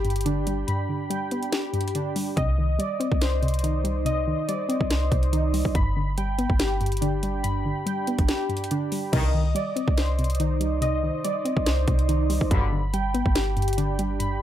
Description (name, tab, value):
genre	hip hop, trap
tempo	142 BPM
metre	4/4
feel	half-time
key	C harmonic minor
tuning	A4 = 440 Hz
part	soft round pluck	accompaniment	0.0-14.4 s	G2 to C4	-29 LUFS	left 1 dB	chorus, low-pass filter
part	warbly lo-fi synth keys	arpeggios	0.0-14.4 s	D4 to B5	-28 LUFS	right 1 dB	chorus, low-pass filter, ping-pong delay
part	clean 808-style bass	bass	0.0-14.4 s	G1 to C2	-26 LUFS	equal	none
part	trap drum kit	drums	0.0-14.3 s	crash cymbal, hi-hat, kick drum, snare drum	-27 LUFS	equal	none
part	mellow brass ensemble	stabs	9.1-9.4, 12.5-12.8 s	B1 to Eb3	-31 LUFS	left 2 dB	none
room	little or no reverb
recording	none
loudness	-22 LUFS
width	side -11 dB against mid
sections	0.0-9.1 A section; 9.1-14.4 B section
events	kick muted 0.7-2.4, 8.3-9.1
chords	0.0 G; 2.4 Cmadd9; 5.8 G; 9.1 Cmadd9; 12.5 G